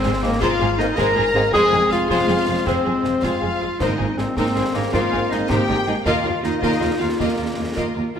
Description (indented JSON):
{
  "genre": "cinematic, heroic adventure film score",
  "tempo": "106 BPM (dotted quarters)",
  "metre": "6/8",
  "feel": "straight",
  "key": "Ab major",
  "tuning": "A4 = 438 Hz",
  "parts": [
    { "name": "warm symphonic violin section", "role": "melody", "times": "0.0-8.1 s", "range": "Bb4 to Bb5", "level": "-26 LUFS", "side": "left 2 dB", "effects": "none" },
    { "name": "warm clarinet", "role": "second line", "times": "0.0-8.2 s", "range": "Bb3 to Bb4", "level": "-22 LUFS", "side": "left 2 dB", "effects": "none" },
    { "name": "warm symphonic violin section", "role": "second line", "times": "0.0-8.2 s", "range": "Eb4 to Eb5", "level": "-27 LUFS", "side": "left 2 dB", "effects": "none" },
    { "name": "warm symphonic viola section", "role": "accompaniment", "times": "0.0-8.2 s", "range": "Ab3 to Ab4", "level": "-26 LUFS", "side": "right 2 dB", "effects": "none" },
    { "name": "dark symphonic cello section", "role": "bass", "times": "0.0-8.2 s", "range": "Eb2 to Ab2", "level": "-29 LUFS", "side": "right 3 dB", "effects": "none" },
    { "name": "rich symphonic double bass section", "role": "bass", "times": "0.0-8.2 s", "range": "F1 to Eb2", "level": "-29 LUFS", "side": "right 3 dB", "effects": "none" },
    { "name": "dark French horn section", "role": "sustained chords", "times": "0.2-8.1 s", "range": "Ab3 to F4", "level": "-27 LUFS", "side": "left 2 dB", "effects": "none" },
    { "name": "concert snare drum, concert bass drum and clash cymbals", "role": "drums", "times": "0.4-7.9 s", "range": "none", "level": "-29 LUFS", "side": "right 1 dB", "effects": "none" },
    { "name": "timpani", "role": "percussion", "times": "3.8-4.3 s", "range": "Ab2", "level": "-33 LUFS", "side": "right 1 dB", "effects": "none" }
  ],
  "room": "wet scoring stage reverb, RT60 1.7 s",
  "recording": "none",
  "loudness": "-17 LUFS",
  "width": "side -8 dB against mid",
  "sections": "0.0-8.2 A section",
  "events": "none",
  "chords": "0.0 Abadd9; 1.5 Fm; 3.8 Abadd9; 6.1 Ebsus2"
}